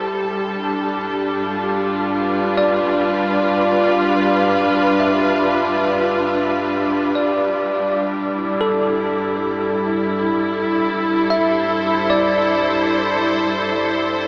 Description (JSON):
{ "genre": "ambient", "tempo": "free time", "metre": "none", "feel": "none", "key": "G mixolydian", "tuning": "A4 = 439 Hz", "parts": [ { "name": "rich chamber string section", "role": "sustained chords", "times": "0.0-14.3 s", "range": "G3 to C5", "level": "-20 LUFS", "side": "equal", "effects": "none" }, { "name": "bell-like tine electric piano", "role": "arpeggios", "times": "0.0-14.3 s", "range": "G4 to E5", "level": "-25 LUFS", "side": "equal", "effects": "tape echo" }, { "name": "warm studio cello section", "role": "bass", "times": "0.0-14.3 s", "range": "G2", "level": "-33 LUFS", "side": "equal", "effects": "none" } ], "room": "wet shimmer reverb, RT60 7.9 s", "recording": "small speaker sound", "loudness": "-19 LUFS", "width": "mono", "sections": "0.0-14.3 A section", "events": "none", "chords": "0.0 G7; 8.0 C69/G", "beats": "free time" }